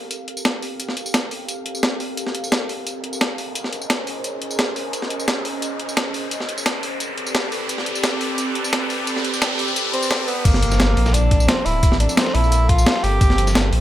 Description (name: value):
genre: liquid drum and bass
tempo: 174 BPM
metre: 4/4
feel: straight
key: unclear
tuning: A4 = 440 Hz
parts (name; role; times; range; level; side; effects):
- lush unison pad; sustained chords; 0.0-13.8 s; F3 to F5; -27 LUFS; right 1 dB; chorus, phaser
- riser and impact; sound effects; 0.6-11.8 s; none; -28 LUFS; equal; none
- breakbeat sampler-style drum kit; drums; 0.1-13.8 s; crash cymbal, hi-hat, snare drum, tambourine; -22 LUFS; equal; high-pass filter on hats, high-pass filter on snare, high-pass filter on perc, high-pass filter on cymbals, high-pass filter on room
- clear tenor saxophone; melody; 9.9-13.6 s; Bb3 to G4; -22 LUFS; equal; dub echo
- warm sub bass; bass; 10.5-13.8 s; D1 to Bb1; -18 LUFS; equal; tube saturation
- dusty soul sampler-style drum kit; drums; 10.5-13.8 s; hi-hat, snare drum; -28 LUFS; equal; high-pass filter on hats, high-pass filter on snare, high-pass filter on room
- electronic kick drum; drums; 10.5-13.3 s; none; -16 LUFS; equal; none
room: light reverb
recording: none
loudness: -18 LUFS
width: side -12 dB against mid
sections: 0.0-10.5 A section; 10.5-13.8 B section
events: build-up 0.0-10.5; filter sweep on analog synth pad 0.0-10.5; riser 0.6-10.5; drop 10.5-13.8; impact 10.5-11.8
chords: 0.0 Gm11; 3.6 Bbm11; 7.0 Am11; 10.5 Gm11